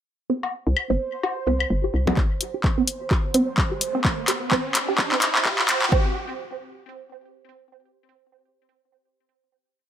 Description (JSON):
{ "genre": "minimal techno", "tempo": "128 BPM", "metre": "4/4", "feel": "swing 58% on 16ths", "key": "unclear", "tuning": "A4 = 440 Hz", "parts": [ { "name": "resonant blip pluck", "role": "riff", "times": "0.3-6.1 s", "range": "C4 to G4", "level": "-26 LUFS", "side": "right 3 dB", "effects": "phaser, sidechain pumping, digital delay" }, { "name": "bubbling stepped-filter texture", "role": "texture", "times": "0.3-5.9 s", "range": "C5", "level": "-34 LUFS", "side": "right 5 dB", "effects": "chorus, built-in reverb, sidechain pumping" }, { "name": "woodblock, bongos and congas", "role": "percussion", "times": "0.4-2.2 s", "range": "none", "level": "-26 LUFS", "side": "left 4 dB", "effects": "dub echo" }, { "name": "hollow knocking FM bass", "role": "bass", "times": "0.7-2.1 s", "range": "G1 to C2", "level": "-22 LUFS", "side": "equal", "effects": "tube saturation, sidechain pumping" }, { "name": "electronic kick drum", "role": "drums", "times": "2.2-6.0 s", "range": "none", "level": "-22 LUFS", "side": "equal", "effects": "overdrive" }, { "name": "punchy analog drum machine", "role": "drums", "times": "2.2-5.9 s", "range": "handclaps, hi-hat", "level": "-22 LUFS", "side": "left 1 dB", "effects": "overdrive" }, { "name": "riser", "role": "sound effects", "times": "3.4-5.9 s", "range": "none", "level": "-30 LUFS", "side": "right 1 dB", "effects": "none" } ], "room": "moderate studio reverb, RT60 0.6 s", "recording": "high-pass filter", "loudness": "-20 LUFS", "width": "side -10 dB against mid", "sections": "0.3-2.2 intro; 2.2-5.9 build; 5.9-9.7 final note", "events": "build-up 2.2-5.9; drum fill 2.2-5.9; filter sweep on synth arpeggio sound 2.2-5.9; filter sweep 2.2-5.9; riser 3.4-5.9", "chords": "0.3 C5; 5.9 N.C." }